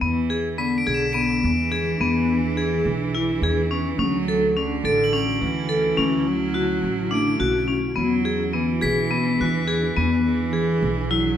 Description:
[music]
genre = contemporary instrumental, chamber music in an uneven meter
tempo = 211 BPM (eighths)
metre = 7/8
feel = straight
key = E mixolydian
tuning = A4 = 440 Hz
[part]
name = rich cello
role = second line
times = 0.0-11.4 s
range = D3 to A3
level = -27 LUFS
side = right 6 dB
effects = none
[part]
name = granular cloud pad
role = sustained chords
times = 1.1-11.4 s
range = D3 to G#4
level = -30 LUFS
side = equal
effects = built-in reverb
[part]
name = vibraphone with hard mallets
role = arpeggios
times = 0.0-11.3 s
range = B3 to A4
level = -22 LUFS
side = left 3 dB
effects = none
[part]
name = upright bass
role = bass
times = 0.0-11.3 s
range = A1 to E2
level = -28 LUFS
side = right 2 dB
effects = none
[part]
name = crotales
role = texture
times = 0.6-10.3 s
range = F#6 to F#7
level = -30 LUFS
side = left 4 dB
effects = none
[sound]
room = moderate recital hall reverb, RT60 1.4 s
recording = minimal, uncompressed stereo recording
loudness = -19 LUFS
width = side -10 dB against mid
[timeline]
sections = 0.0-11.4 A section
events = none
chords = 0.0 E7; 4.0 Dmaj9; 8.0 E7

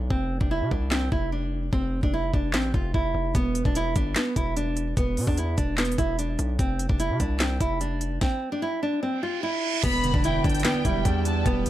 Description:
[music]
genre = hip hop, trap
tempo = 148 BPM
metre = 4/4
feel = half-time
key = E phrygian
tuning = A4 = 440 Hz
[part]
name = nylon-string guitar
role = melody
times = 0.0-11.7 s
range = B3 to F4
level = -27 LUFS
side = right 1 dB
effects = tape echo
[part]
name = distorted 808-style bass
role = bass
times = 0.0-11.7 s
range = E1 to C3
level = -28 LUFS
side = equal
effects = distortion
[part]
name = trap drum kit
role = drums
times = 0.1-11.7 s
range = crash cymbal, handclaps, hi-hat, kick drum, snare drum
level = -26 LUFS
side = equal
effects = none
[part]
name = reverse cymbal and impact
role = sound effects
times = 9.2-11.5 s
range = none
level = -34 LUFS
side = right 3 dB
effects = none
[part]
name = dark studio violin section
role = second line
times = 9.8-11.4 s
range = G5 to B5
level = -30 LUFS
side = left 3 dB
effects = tape echo
[part]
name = mellow electric guitar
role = accompaniment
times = 9.8-11.7 s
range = E2 to B3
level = -29 LUFS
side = right 3 dB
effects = none
[part]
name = airy breathy pad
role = sustained chords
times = 10.1-11.7 s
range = E4 to G5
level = -36 LUFS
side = right 1 dB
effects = chorus
[sound]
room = little or no reverb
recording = none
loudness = -23 LUFS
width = side -13 dB against mid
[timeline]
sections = 0.0-9.8 A section; 9.8-11.7 B section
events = break 0.0-3.3; reverse cymbal 9.2-9.8; impact 9.8-11.5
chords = 0.1 F5; 3.3 E7(no3); 6.6 F5; 9.8 Em7

